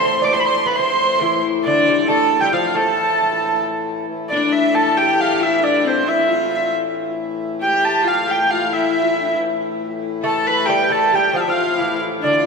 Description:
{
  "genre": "medieval dance",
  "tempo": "91 BPM (dotted quarters)",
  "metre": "6/8",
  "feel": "straight",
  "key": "A minor",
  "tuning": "A4 = 441 Hz",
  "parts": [
    { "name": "rich hurdy-gurdy", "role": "melody", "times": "0.0-12.5 s", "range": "C5 to D6", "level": "-17 LUFS", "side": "right 2 dB", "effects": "none" },
    { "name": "clear viola da gamba", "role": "second line", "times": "0.0-12.5 s", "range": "C4 to D5", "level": "-22 LUFS", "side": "left 5 dB", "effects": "none" },
    { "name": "lute", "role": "second line", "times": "0.0-3.6, 10.2-12.4 s", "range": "D3 to D4", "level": "-25 LUFS", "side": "right 5 dB", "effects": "none" },
    { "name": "hand-pumped harmonium", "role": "drone", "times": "0.0-12.5 s", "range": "A2 to E3", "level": "-25 LUFS", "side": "left 4 dB", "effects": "none" }
  ],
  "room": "wet church reverb, RT60 3.3 s",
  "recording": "minimal, uncompressed stereo recording",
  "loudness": "-15 LUFS",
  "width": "side -4 dB against mid",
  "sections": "0.0-4.1 A section; 4.1-12.5 A section",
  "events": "none",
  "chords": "none"
}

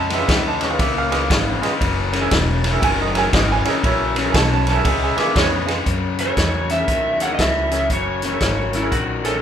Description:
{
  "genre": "electric blues shuffle",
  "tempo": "118 BPM",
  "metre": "4/4",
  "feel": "swing 64% on 8ths",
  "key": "F# mixolydian",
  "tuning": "A4 = 440 Hz",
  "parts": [
    { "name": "clear upright piano", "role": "accompaniment", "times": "0.0-9.3 s", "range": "E4 to C#6", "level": "-23 LUFS", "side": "right 7 dB", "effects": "none" },
    { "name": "raw garage guitar", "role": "riff", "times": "0.0-9.4 s", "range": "F#2 to B3", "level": "-22 LUFS", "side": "left 6 dB", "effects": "overdrive" },
    { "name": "upright bass", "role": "bass", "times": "0.0-9.4 s", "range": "E1 to F#2", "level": "-24 LUFS", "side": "equal", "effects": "none" },
    { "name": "vintage drum kit", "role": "drums", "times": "0.1-9.3 s", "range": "hi-hat, kick drum, ride cymbal, snare drum", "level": "-21 LUFS", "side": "equal", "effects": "none" },
    { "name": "lead guitar through a small cranked amp", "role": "melody", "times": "6.2-8.9 s", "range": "C#5 to F#5", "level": "-22 LUFS", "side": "right 2 dB", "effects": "overdrive" },
    { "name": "electric slide guitar", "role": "second line", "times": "8.8-9.4 s", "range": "E4 to A4", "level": "-25 LUFS", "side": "right 2 dB", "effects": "none" }
  ],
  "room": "moderate large studio reverb, RT60 0.8 s",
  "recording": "band playing live in one room",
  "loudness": "-16 LUFS",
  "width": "side -9 dB against mid",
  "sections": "0.0-5.9 A section; 5.9-9.4 B section",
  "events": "none",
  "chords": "0.0 C#7; 1.8 F#7; 4.9 C#7; 5.9 F#7"
}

